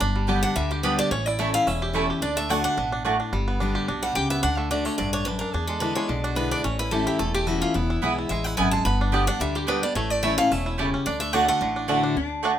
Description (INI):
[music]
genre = bluegrass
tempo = 218 BPM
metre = 4/4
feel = swing 53% on 8ths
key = D major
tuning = A4 = 440 Hz
[part]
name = picked steel-string acoustic guitar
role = melody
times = 0.0-11.9 s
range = E4 to B5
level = -26 LUFS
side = right 1 dB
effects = none
[part]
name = picked steel-string acoustic guitar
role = accompaniment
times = 0.0-12.2 s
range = E2 to G4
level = -28 LUFS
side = left 3 dB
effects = none
[part]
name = bluegrass banjo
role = arpeggios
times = 0.0-12.5 s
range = D3 to G4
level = -30 LUFS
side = right 2 dB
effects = none
[part]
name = upright bass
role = bass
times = 0.0-12.6 s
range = E1 to E2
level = -29 LUFS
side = equal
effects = none
[part]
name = mandolin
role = stabs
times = 0.3-3.2, 8.0-12.5 s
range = A3 to A5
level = -25 LUFS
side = right 5 dB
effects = none
[part]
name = lap resonator guitar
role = second line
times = 12.2-12.6 s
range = D4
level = -28 LUFS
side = left 3 dB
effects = none
[sound]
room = moderate studio ambience, RT60 0.5 s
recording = minimal, uncompressed stereo recording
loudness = -22 LUFS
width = side -10 dB against mid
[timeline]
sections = 0.0-3.3 A section; 3.3-12.2 A section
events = none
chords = 0.0 G; 1.1 A; 2.2 D; 3.3 G; 4.4 D; 5.5 E7; 6.6 A; 7.7 E; 8.9 G; 10.0 A; 11.1 D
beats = | 0.01 0.29 0.56 0.84 | 1.12 1.40 1.67 1.95 | 2.23 2.50 2.78 3.06 | 3.33 3.61 3.88 4.16 | 4.44 4.71 4.99 5.26 | 5.54 5.82 6.09 6.37 | 6.64 6.92 7.20 7.47 | 7.75 8.02 8.30 8.57 | 8.85 9.13 9.40 9.68 | 9.96 10.23 10.51 10.78 | 11.06 11.33 11.61 11.88 | 12.16 12.44